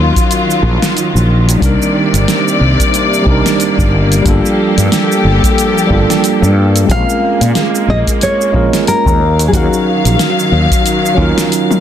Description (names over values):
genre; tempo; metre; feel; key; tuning
sunset chillout; 91 BPM; 4/4; swing 58% on 16ths; C minor; A4 = 440 Hz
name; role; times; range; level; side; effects
tine electric piano; accompaniment; 0.0-11.8 s; Gb3 to F5; -15 LUFS; moving between left 4 dB and right 6 dB; auto-pan, ping-pong delay
warm studio string section; sustained chords; 0.0-11.8 s; C3 to F5; -16 LUFS; left 1 dB; none
fretless electric bass; bass; 0.0-11.3 s; G1 to Bb2; -12 LUFS; equal; none
deep house drum kit; drums; 0.2-11.8 s; cabasa, hi-hat, snare drum, toms; -17 LUFS; equal; none
electronic kick drum; drums; 0.2-11.3 s; none; -16 LUFS; equal; none
nylon-string guitar; melody; 6.9-10.8 s; Gb4 to F5; -16 LUFS; left 1 dB; tape echo
room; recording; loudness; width
light reverb; dense, heavily limited modern master; -9 LUFS; side -10 dB against mid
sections
0.0-11.8 A section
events
none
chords
0.0 Ebm9; 1.6 Cm9; 4.3 Gm9; 6.9 Bbm9; 9.2 Ebm9